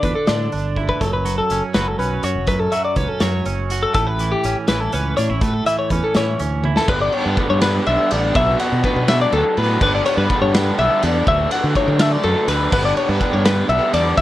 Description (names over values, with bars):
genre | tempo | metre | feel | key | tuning
math rock and midwest emo | 82 BPM (dotted quarters) | 6/8 | straight | unclear | A4 = 440 Hz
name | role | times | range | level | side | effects
twelve-string electric guitar | accompaniment | 0.0-6.9 s | F#2 to F#4 | -24 LUFS | right 5 dB | none
twelve-string electric guitar | arpeggios | 0.0-14.2 s | G4 to F#5 | -19 LUFS | left 2 dB | none
modern bright fingered electric bass | bass | 0.0-14.2 s | F#1 to D3 | -21 LUFS | equal | none
loose indie drum kit | drums | 0.0-14.2 s | crash cymbal, hi-hat, kick drum, ride cymbal, snare drum, toms | -22 LUFS | equal | none
raw garage guitar | riff | 6.9-14.2 s | B2 to D4 | -21 LUFS | right 2 dB | overdrive
room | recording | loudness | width
light reverb | worn, warbling old tape, cassette tape, warbly pitch drift | -16 LUFS | side -14 dB against mid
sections
0.0-6.9 A section; 6.9-14.2 B section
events
drum fill 0.8, 6.6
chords
0.0 Gadd9; 1.0 F#m; 4.0 A; 6.9 G; 8.4 Bm7; 9.8 G; 11.3 Dmaj7; 12.7 G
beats
0.28 | 1.01 1.75 | 2.48 3.22 | 3.96 4.69 | 5.42 6.16 | 6.89 7.62 | 8.35 9.08 | 9.81 10.54 | 11.27 12.00 | 12.72 13.45 | 14.17